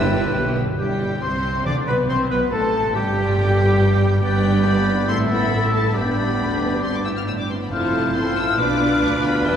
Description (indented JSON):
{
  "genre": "quick classical-period movement for symphony orchestra",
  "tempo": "138 BPM",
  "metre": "4/4",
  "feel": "rubato",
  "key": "unclear",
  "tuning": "A4 = 440 Hz",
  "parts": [
    { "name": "warm studio violin section", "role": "melody", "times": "0.0-9.6 s", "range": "G5 to F6", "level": "-31 LUFS", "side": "left 4 dB", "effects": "none" },
    { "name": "clear clarinet", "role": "second line", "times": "0.0-9.6 s", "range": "D4 to D5", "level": "-26 LUFS", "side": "equal", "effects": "none" },
    { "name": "clear oboe", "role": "second line", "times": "0.0-9.6 s", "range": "G4 to E5", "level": "-27 LUFS", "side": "right 1 dB", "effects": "none" },
    { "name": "mellow small flute group", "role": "second line", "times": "0.0-9.6 s", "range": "E5 to A6", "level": "-27 LUFS", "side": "left 3 dB", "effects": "none" },
    { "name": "rich symphonic violin section", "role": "second line", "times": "0.0-9.6 s", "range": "E4 to E5", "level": "-28 LUFS", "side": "left 2 dB", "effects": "none" },
    { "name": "warm studio viola section", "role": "accompaniment", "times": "0.0-9.6 s", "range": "G3 to G4", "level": "-28 LUFS", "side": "equal", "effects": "none" },
    { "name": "warm French horn section", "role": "sustained chords", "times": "0.0-9.6 s", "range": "G3 to F4", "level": "-27 LUFS", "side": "left 1 dB", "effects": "none" },
    { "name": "clear studio double bass section", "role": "bass", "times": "0.0-9.6 s", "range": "E1 to D2", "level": "-25 LUFS", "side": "right 1 dB", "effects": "none" },
    { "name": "rich studio cello section", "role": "bass", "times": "0.0-9.6 s", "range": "D2 to D3", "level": "-24 LUFS", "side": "right 2 dB", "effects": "none" },
    { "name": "timpani", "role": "percussion", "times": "0.0-2.3 s", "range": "G2 to C3", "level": "-28 LUFS", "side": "equal", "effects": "none" }
  ],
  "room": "wet church reverb, RT60 3.5 s",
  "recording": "recorded in a church or concert hall",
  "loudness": "-17 LUFS",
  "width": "side -8 dB against mid",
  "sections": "0.8-9.6 A section",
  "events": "none",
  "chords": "0.0 G; 0.8 C5/G; 1.7 Bm; 2.5 Gsus2; 3.4 N.C.; 4.2 G; 5.1 A5; 6.0 G; 7.7 Fmaj7; 8.6 Bdim"
}